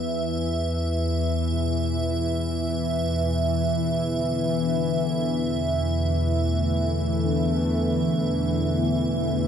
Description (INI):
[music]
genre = dark ambient drone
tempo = 54 BPM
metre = 4/4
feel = straight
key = unclear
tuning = A4 = 440 Hz
[part]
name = bowed-like drone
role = drone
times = 0.0-9.5 s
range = E2 to E3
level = -25 LUFS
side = left 1 dB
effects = built-in reverb
[part]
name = icy glass pad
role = texture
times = 0.0-9.5 s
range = E5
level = -30 LUFS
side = right 4 dB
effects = chorus, built-in reverb
[part]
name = bronze singing bowl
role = arpeggios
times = 1.5-9.5 s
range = B2 to D4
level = -36 LUFS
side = right 2 dB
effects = none
[part]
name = sweeping resonant pad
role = sustained chords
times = 2.8-9.5 s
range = E2 to B3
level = -26 LUFS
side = equal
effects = chorus
[sound]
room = wet cathedral reverb, RT60 6.5 s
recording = none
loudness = -22 LUFS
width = side -8 dB against mid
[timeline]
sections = 0.0-9.5 A section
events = filter sweep on synth drone 0.0-9.5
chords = 0.0 E5; 2.8 Asus2/E